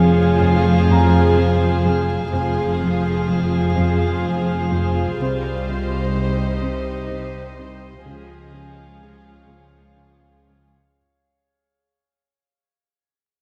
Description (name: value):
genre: cinematic, suspense film score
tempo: 63 BPM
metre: 3/4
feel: straight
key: unclear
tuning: A4 = 440 Hz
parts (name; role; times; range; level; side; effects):
- rich chamber violin section; melody; 0.0-10.7 s; Ab4 to C5; -29 LUFS; equal; none
- warm studio viola section; accompaniment; 0.0-10.7 s; F3 to F4; -29 LUFS; equal; none
- drifting glass-harmonics texture; sustained chords; 0.0-11.0 s; G4 to F5; -28 LUFS; equal; chorus, built-in reverb
- warm studio cello section; riff; 0.0-10.8 s; F2 to Db3; -28 LUFS; equal; none
- warm studio cello section; bass; 0.0-10.7 s; C2 to F2; -23 LUFS; equal; none
- warm studio double bass section; bass; 0.0-10.7 s; F1 to Db2; -26 LUFS; equal; none
- felt-muted upright piano; texture; 0.9-5.2 s; Bb5; -33 LUFS; equal; none
room: light reverb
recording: close, detailed microphones, vinyl crackle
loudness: -19 LUFS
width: mono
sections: 0.0-11.0 A section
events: fade-out 0.0-11.0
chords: 0.0 Fm; 5.2 Cm; 8.1 Db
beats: 0.41 1.38 | 2.34 3.30 4.25 | 5.20 6.15 7.10 | 8.05 9.01 9.98